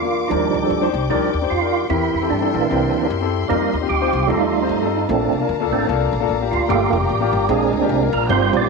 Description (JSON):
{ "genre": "uptempo gospel", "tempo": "150 BPM", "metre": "4/4", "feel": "swing 59% on 8ths", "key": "Bb major", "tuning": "A4 = 440 Hz", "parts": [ { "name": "warm grand piano", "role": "accompaniment", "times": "0.0-8.7 s", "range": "G2 to C5", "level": "-21 LUFS", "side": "left 15 dB", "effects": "none" }, { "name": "dark studio string section", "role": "sustained chords", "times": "0.0-8.7 s", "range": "C5 to D6", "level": "-28 LUFS", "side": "left 3 dB", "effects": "none" }, { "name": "percussive tonewheel organ", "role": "sustained chords", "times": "0.0-8.7 s", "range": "E3 to D5", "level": "-19 LUFS", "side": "right 10 dB", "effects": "slow rotary speaker, overdrive, chorus vibrato" }, { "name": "upright bass", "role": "bass", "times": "0.0-8.7 s", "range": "F1 to G2", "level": "-24 LUFS", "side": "equal", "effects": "none" } ], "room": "wet spring reverb, RT60 1.3 s", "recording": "1960s-style stereo with parts hard left and right", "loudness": "-16 LUFS", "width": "side -3 dB against mid", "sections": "0.0-8.7 A section", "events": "tonewheel organ solo 0.0-8.7", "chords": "0.3 Ebmaj7; 1.9 C7; 3.5 F7sus4; 4.3 F7; 5.1 Bbmaj7; 6.7 Gm7; 7.5 Bb7" }